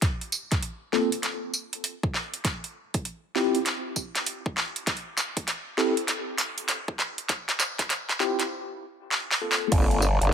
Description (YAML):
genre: glitch hop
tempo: 99 BPM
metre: 4/4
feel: swing 64% on 16ths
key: unclear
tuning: A4 = 438 Hz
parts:
  - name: electronic kick drum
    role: drums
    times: 0.0-9.9 s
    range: none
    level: -27 LUFS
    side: equal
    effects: none
  - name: pop drum kit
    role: drums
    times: 0.0-10.3 s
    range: crash cymbal, hi-hat, snare drum, tambourine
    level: -27 LUFS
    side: right 1 dB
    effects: high-pass filter on hats, high-pass filter on snare, high-pass filter on perc, high-pass filter on cymbals
  - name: mellow tine electric piano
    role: stabs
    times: 0.9-10.0 s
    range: Bb3 to A4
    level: -28 LUFS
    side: left 1 dB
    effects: medium stereo tremolo, sidechain pumping, dub echo
  - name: growl bass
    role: bass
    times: 9.7-10.3 s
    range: G1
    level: -21 LUFS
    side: equal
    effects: chorus
room: light reverb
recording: high-pass filter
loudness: -25 LUFS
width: side -8 dB against mid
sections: 0.0-9.7 A section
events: build-up 0.0-9.7; drum fill 0.0-8.5, 9.1-9.7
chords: 0.0 Bbsus2; 2.4 Cadd11; 4.9 Am7; 7.3 Bbsus2; 9.7 Gm11